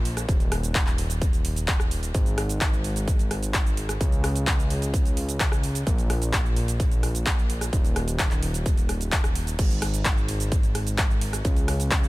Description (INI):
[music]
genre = EDM, festival progressive house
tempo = 129 BPM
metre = 4/4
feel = straight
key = unclear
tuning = A4 = 439 Hz
[part]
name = fat analog bass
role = bass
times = 0.0-12.1 s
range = Eb1 to Db2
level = -27 LUFS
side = equal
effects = sidechain pumping
[part]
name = big-room dance drum kit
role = drums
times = 0.1-12.1 s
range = crash cymbal, handclaps, hi-hat, ride cymbal, rim click, shaker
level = -29 LUFS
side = equal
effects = none
[part]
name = electronic kick drum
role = drums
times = 0.3-12.0 s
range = none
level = -23 LUFS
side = equal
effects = none
[sound]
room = little or no reverb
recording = none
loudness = -22 LUFS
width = side -19 dB against mid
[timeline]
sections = 0.0-9.6 A section; 9.6-12.1 A section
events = drop 0.0-9.6, 9.6-12.1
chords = none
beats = | 0.29 0.75 1.22 1.68 | 2.15 2.61 3.08 3.54 | 4.01 4.47 4.94 5.40 | 5.87 6.33 6.80 7.26 | 7.73 8.19 8.66 9.12 | 9.59 10.05 10.52 10.98 | 11.45 11.91